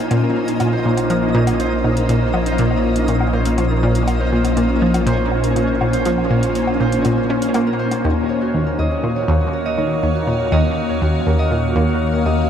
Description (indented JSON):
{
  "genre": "ambient, sequencer-driven space music",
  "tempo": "121 BPM",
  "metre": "4/4",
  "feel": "straight",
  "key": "Bb minor, Eb minor from 8.0 s",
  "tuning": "A4 = 444 Hz",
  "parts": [
    { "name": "evolving wavetable pad", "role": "sustained chords", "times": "0.0-12.5 s", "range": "Bb2 to F5", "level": "-22 LUFS", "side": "left 1 dB", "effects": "ensemble chorus, built-in reverb, phaser" },
    { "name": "Celtic harp", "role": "arpeggios", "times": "0.0-12.5 s", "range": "Bb3 to Eb5", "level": "-22 LUFS", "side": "moving between left 3 dB and right 4 dB", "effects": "auto-pan, tape echo" },
    { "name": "round analog bass", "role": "bass", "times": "0.0-12.5 s", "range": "Bb1 to Eb2", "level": "-24 LUFS", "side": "equal", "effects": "none" },
    { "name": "twinkling granular texture", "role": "texture", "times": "0.0-8.1 s", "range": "Db4 to Ab5", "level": "-26 LUFS", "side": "right 1 dB", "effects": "built-in reverb" },
    { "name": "analog pluck", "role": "riff", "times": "0.1-12.4 s", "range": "Eb2 to Db4", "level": "-19 LUFS", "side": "equal", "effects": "chorus, tape echo" },
    { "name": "electronic hi-hat and woodblock", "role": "percussion", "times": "0.1-8.0 s", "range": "none", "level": "-31 LUFS", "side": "left 3 dB", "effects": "tape echo" }
  ],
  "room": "wet huge ambient reverb, RT60 8.3 s",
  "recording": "in a vast, echoing space",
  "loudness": "-15 LUFS",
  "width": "side -8 dB against mid",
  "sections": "0.0-8.0 A section; 8.0-12.5 B section",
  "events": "none",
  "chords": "0.0 Bbmadd9; 8.0 Ebm7",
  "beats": "| 0.11 0.60 1.10 1.59 | 2.09 2.59 3.08 3.58 | 4.08 4.57 5.07 5.56 | 6.06 6.55 7.05 7.55 | 8.04 8.54 9.03 9.53 | 10.03 10.52 11.02 11.51 | 12.01"
}